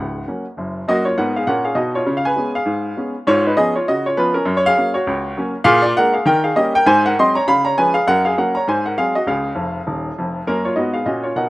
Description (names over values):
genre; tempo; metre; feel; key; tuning
jazz, stride piano; 200 BPM; 4/4; swing 60% on 8ths; F# major; A4 = 440 Hz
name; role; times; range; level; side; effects
clear upright piano; solo; 0.0-11.5 s; C#1 to B#5; -15 LUFS; equal; none
room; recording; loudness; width
light reverb; rough home demo mix; -15 LUFS; side -18 dB against mid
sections
0.9-10.5 A section; 10.5-11.5 B section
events
upright piano fill 9.6-10.5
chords
0.0 F#; 2.1 C#7; 3.3 C#7/G#; 4.5 F#; 5.7 A#7; 6.3 D#7; 6.9 G#7; 7.5 C#7; 8.1 F#; 8.7 G#7; 9.3 C#; 10.5 F#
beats
0.27 0.57 | 0.87 1.17 1.47 1.77 | 2.07 2.37 2.67 2.97 | 3.27 3.57 3.87 4.17 | 4.47 4.77 5.07 5.37 | 5.67 5.97 6.27 6.57 | 6.87 7.17 7.47 7.77 | 8.07 8.37 8.67 8.97 | 9.27 9.57 9.87 10.17 | 10.47 10.77 11.07 11.37